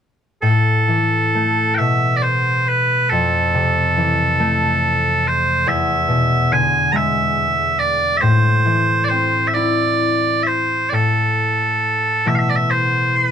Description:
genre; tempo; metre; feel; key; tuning
celtic folk, Celtic slow air; 44-48 BPM (dotted quarters); 6/8; rubato; A minor; A4 = 440 Hz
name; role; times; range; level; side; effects
loud bright bagpipes; melody; 0.4-13.3 s; A4 to Bb5; -17 LUFS; right 2 dB; none
concert harp; accompaniment; 0.4-13.3 s; E2 to E4; -18 LUFS; left 2 dB; none
room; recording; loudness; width
moderate small room reverb, RT60 0.5 s; band playing live in one room; -14 LUFS; side -8 dB against mid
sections
0.4-10.9 A section; 10.9-13.3 A section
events
none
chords
0.4 Asus2; 3.1 Fmaj7; 5.7 E7; 8.2 Am; 10.9 Asus2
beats
| 0.44 1.79 | 3.11 4.39 | 5.67 6.93 | 8.21 9.55 | 10.91 12.26

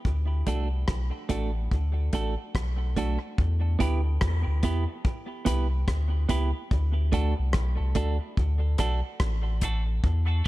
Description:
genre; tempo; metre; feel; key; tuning
dub reggae; 72 BPM; 4/4; swing 60% on 16ths; unclear; A4 = 441 Hz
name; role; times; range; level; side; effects
warm sub bass; bass; 0.1-10.4 s; A1 to E2; -26 LUFS; equal; none
damped 70s drum kit; drums; 0.1-10.5 s; hi-hat, kick drum, rim click; -28 LUFS; equal; none
clean electric guitar; accompaniment; 0.5-10.5 s; A3 to B4; -32 LUFS; right 5 dB; high-pass filter, dub echo
room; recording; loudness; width
small room ambience; echo-heavy mix; -24 LUFS; side -17 dB against mid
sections
0.0-3.4 A section; 3.4-10.5 B section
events
filter sweep on clean electric guitar 6.7-10.5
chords
0.0 D; 3.4 Em; 6.7 D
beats
| 0.05 0.88 1.71 2.55 | 3.38 4.21 5.05 5.88 | 6.71 7.55 8.38 9.21 | 10.04

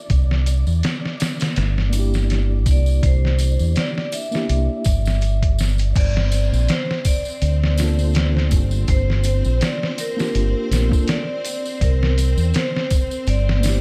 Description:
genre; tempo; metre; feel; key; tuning
trip hop; 82 BPM; 4/4; swing 56% on 16ths; G dorian; A4 = 439 Hz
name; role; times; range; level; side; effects
flickering grainy texture; texture; 0.0-6.0 s; D5; -43 LUFS; equal; built-in reverb
deep dub fingered electric bass; bass; 0.1-13.8 s; G1 to E2; -20 LUFS; equal; tube saturation
trip hop sampler-style drum kit; drums; 0.1-13.8 s; crash cymbal, hi-hat, kick drum, snare drum; -24 LUFS; equal; studio reverb
tambourine and triangle; percussion; 0.1-13.8 s; none; -37 LUFS; equal; none
mellow tine electric piano; accompaniment; 1.9-13.8 s; Bb3 to A4; -30 LUFS; equal; tremolo
vibraphone with medium hard mallets; melody; 2.7-13.8 s; Bb4 to E5; -31 LUFS; equal; tape echo
clear studio string section; sustained chords; 6.0-13.8 s; C4 to C5; -34 LUFS; equal; none
room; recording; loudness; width
little or no reverb; vinyl crackle; -19 LUFS; mono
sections
0.0-6.0 A section; 6.0-13.8 B section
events
filter sweep on tine electric piano 0.0-6.0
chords
0.1 C7; 6.0 Gm7; 11.8 C7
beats
| 0.10 0.83 1.56 2.29 | 3.03 3.76 4.49 5.22 | 5.95 6.68 7.42 8.15 | 8.88 9.61 10.34 11.07 | 11.81 12.54 13.27

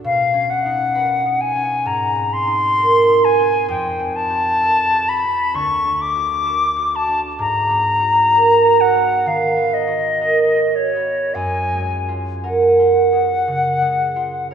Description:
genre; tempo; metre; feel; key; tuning
classical, impressionist duo for flute and harp; 51-67 BPM; 4/4; rubato; unclear; A4 = 439 Hz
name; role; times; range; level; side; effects
concert harp; accompaniment; 0.0-14.5 s; D2 to B4; -19 LUFS; right 4 dB; none
silver concert flute; melody; 0.1-14.5 s; C#5 to D6; -16 LUFS; left 2 dB; none
room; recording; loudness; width
wet church reverb, RT60 3.4 s; recorded in a church or concert hall; -14 LUFS; side -8 dB against mid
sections
0.0-14.5 A section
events
none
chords
0.0 Badd9; 1.9 G#add9; 3.7 Fadd9; 5.6 D; 7.4 G#m9; 11.3 F#maj9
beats
| 0.05 0.95 1.87 2.79 | 3.71 4.62 5.55 6.48 | 7.40 8.34 9.27 10.22 | 11.35 12.44 13.48 14.51

